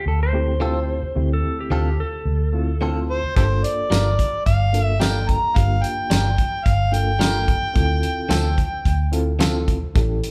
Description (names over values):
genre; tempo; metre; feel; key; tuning
straight-eighth soul blues; 109 BPM; 4/4; swing 54% on 16ths; D minor; A4 = 442 Hz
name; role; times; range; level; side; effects
clean lap steel guitar; second line; 0.0-2.9 s; G4 to C5; -30 LUFS; equal; none
vintage muted fingered electric bass; bass; 0.1-10.2 s; G1 to D2; -24 LUFS; equal; none
reed electric piano; accompaniment; 0.3-10.3 s; A3 to A4; -31 LUFS; equal; overdrive, fast tremolo
direct-recorded clean electric guitar; stabs; 0.6-9.6 s; D3 to Bb4; -31 LUFS; equal; none
overdriven harmonica; melody; 3.1-9.1 s; G4 to Bb5; -26 LUFS; equal; none
damped 70s drum kit; drums; 3.4-10.3 s; hi-hat, kick drum, snare drum, tambourine; -24 LUFS; equal; none
room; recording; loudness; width
moderate large studio reverb, RT60 1.3 s; band playing live in one room; -20 LUFS; mono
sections
0.0-10.3 A section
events
none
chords
0.0 Dm7; 3.4 Gm7; 7.8 Dm7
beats
0.07 0.61 | 1.16 1.71 2.26 2.81 | 3.36 3.91 4.46 5.01 | 5.55 6.10 6.65 7.20 | 7.75 8.30 8.85 9.40 | 9.95